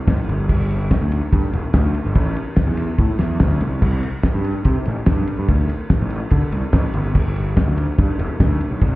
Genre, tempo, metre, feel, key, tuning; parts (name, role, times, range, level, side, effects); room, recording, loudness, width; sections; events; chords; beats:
indie rock; 144 BPM; 4/4; straight; A4 = 442 Hz
fuzz picked electric bass; bass; 0.1-9.0 s; E1 to D3; -20 LUFS; equal; overdrive
cloth-damped thuddy drum kit; drums; 0.1-8.9 s; crash cymbal, kick drum, ride cymbal, snare drum; -19 LUFS; equal
little or no reverb; heard muffled through a wall, stone room reverb, EQ; -16 LUFS; side -18 dB against mid
0.0-9.0 A section
0.08 | 0.50 0.91 1.33 1.74 | 2.16 2.58 2.99 3.41 | 3.82 4.24 4.66 5.07 | 5.49 5.91 6.32 6.74 | 7.16 7.57 7.99 8.41 | 8.82